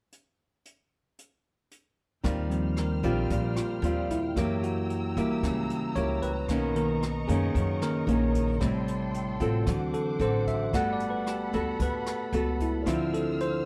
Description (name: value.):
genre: bossa nova.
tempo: 113 BPM.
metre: 4/4.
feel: straight.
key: unclear.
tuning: A4 = 438 Hz.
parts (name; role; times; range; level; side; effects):
jazz brush drum kit; drums; 0.1-13.5 s; hi-hat, kick drum, rim click; -38 LUFS; equal; none.
nylon-string guitar; accompaniment; 2.2-13.7 s; F#2 to A4; -33 LUFS; equal; none.
upright bass; bass; 2.2-13.6 s; G1 to Gb2; -34 LUFS; equal; none.
muted studio string section; sustained chords; 2.3-13.7 s; A4 to F6; -42 LUFS; equal; none.
bell-like tine electric piano; accompaniment; 2.5-13.7 s; C3 to F#5; -33 LUFS; equal; none.
room: light reverb.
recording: none.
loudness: -28 LUFS.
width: mono.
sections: 0.1-2.2 A section; 2.2-13.7 B section.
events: tine electric piano solo 2.2-13.7.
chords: 0.1 N.C.; 2.2 Eb69; 4.4 Gb7b9; 6.5 Bmaj9; 8.6 Am7; 9.7 D7; 10.7 Gmaj9; 12.9 Dm9.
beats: | 0.12 0.65 1.18 1.71 | 2.24 2.77 3.30 3.83 | 4.37 4.90 5.43 5.96 | 6.49 7.02 7.55 8.08 | 8.61 9.14 9.68 10.21 | 10.74 11.27 11.80 12.33 | 12.86 13.40.